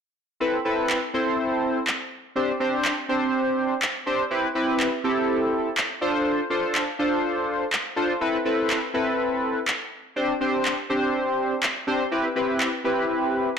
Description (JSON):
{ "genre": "dance-pop", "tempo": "123 BPM", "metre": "4/4", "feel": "straight", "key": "A minor", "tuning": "A4 = 440 Hz", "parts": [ { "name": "chorused polysynth", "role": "accompaniment", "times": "0.4-13.5 s", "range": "C4 to C5", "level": "-22 LUFS", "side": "equal", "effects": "none" }, { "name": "electronic handclaps", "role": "drums", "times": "0.9-12.7 s", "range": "none", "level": "-26 LUFS", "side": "equal", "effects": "overdrive" } ], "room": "moderate digital room reverb, RT60 1.3 s, digital ambience", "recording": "blown-out, overdriven recording, overdrive", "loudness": "-22 LUFS", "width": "side -7 dB against mid", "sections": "0.4-13.6 A section", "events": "none", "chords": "0.4 Amadd9; 2.4 Gsus4; 4.3 Cmaj7; 6.0 F6; 8.2 Amadd9; 10.2 Gsus4; 12.1 Cmaj7" }